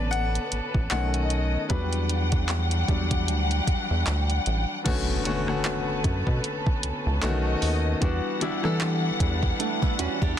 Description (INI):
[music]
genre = contemporary R&B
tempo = 76 BPM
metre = 4/4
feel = swing 58% on 16ths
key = B minor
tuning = A4 = 440 Hz
[part]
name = clear concert grand piano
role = accompaniment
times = 0.0-10.4 s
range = D3 to F#5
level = -29 LUFS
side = left 2 dB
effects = plate reverb
[part]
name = dark studio string section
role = sustained chords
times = 0.0-10.4 s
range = E3 to G5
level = -31 LUFS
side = left 1 dB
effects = none
[part]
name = rubbery square bass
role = bass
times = 0.0-10.4 s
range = A1 to E3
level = -26 LUFS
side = equal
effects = none
[part]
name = smooth R&B drum kit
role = drums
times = 0.1-10.4 s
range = crash cymbal, handclaps, hi-hat, kick drum, rim click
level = -27 LUFS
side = equal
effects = vintage 12-bit sampler grit
[part]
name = impact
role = sound effects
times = 4.9-8.0 s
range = none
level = -37 LUFS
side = right 1 dB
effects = none
[part]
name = flamenco guitar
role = arpeggios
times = 9.6-10.4 s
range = A3 to G4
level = -29 LUFS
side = right 13 dB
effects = none
[sound]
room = light reverb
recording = dense, heavily limited modern master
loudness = -23 LUFS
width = side -10 dB against mid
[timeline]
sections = 0.0-4.9 A section; 4.9-10.4 B section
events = grand piano solo 0.0-4.9; impact 4.9-8.0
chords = 0.0 Bm7; 0.9 B7; 1.7 Em9; 4.9 Bm7; 7.2 B7; 8.0 Em9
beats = 0.12 0.91 | 1.70 2.49 3.28 4.07 | 4.86 5.65 6.44 7.22 | 8.02 8.80 9.59 10.38